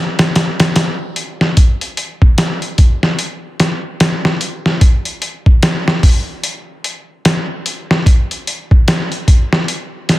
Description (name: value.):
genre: trip hop.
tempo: 74 BPM.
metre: 4/4.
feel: swing 60% on 16ths.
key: none.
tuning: none.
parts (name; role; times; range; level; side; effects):
trip hop sampler-style drum kit; drums; 0.2-10.2 s; hi-hat, kick drum, snare drum; -12 LUFS; equal; none.
room: little or no reverb.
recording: dense, heavily limited modern master.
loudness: -12 LUFS.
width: side -17 dB against mid.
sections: 0.0-10.2 A section.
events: none.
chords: none.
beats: 0.76 | 1.57 2.38 3.20 4.01 | 4.82 5.63 6.44 7.25 | 8.06 8.87 9.68.